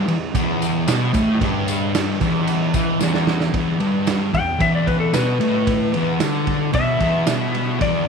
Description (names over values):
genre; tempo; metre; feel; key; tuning
garage rock duo or trio; 112 BPM; 4/4; straight; E minor; A4 = 440 Hz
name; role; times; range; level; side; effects
thick fuzz guitar; riff; 0.0-8.1 s; E2 to E3; -19 LUFS; left 1 dB; distortion
raw garage drum kit; drums; 0.1-7.9 s; kick drum, ride cymbal, snare drum; -23 LUFS; right 4 dB; none
tambourine; percussion; 0.3-7.4 s; none; -35 LUFS; left 16 dB; none
electric slide guitar; melody; 4.3-8.1 s; A4 to G5; -22 LUFS; left 4 dB; tape echo
room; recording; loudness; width
light reverb, studio reverb; 1960s-style stereo; -17 LUFS; side -5 dB against mid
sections
0.0-3.5 A section; 3.5-8.1 B section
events
drum fill 3.0-3.5; electric slide guitar solo 3.5-8.1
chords
0.0 Em; 3.5 E5